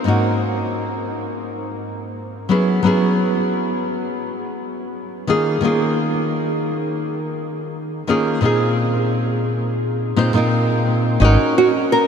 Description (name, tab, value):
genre	sunset chillout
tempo	86 BPM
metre	4/4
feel	straight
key	unclear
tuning	A4 = 440 Hz
part	nylon-string guitar	accompaniment	0.0-12.1 s	G#2 to B#4	-18 LUFS	equal	auto-pan, analog delay
part	nylon-string guitar	melody	11.2-12.1 s	D#4 to A#4	-16 LUFS	right 2 dB	analog chorus
part	fingered electric bass	bass	11.2-11.4 s	G#1	-12 LUFS	equal	none
room	wet huge ambient reverb, RT60 7.5 s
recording	dreamy mix soaked in reverb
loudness	-17 LUFS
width	side -7 dB against mid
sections	0.1-11.2 A section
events	none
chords	0.1 G#9sus4; 2.5 F#9sus4; 5.3 D#9sus4; 8.4 A#9sus4; 11.2 G#9sus4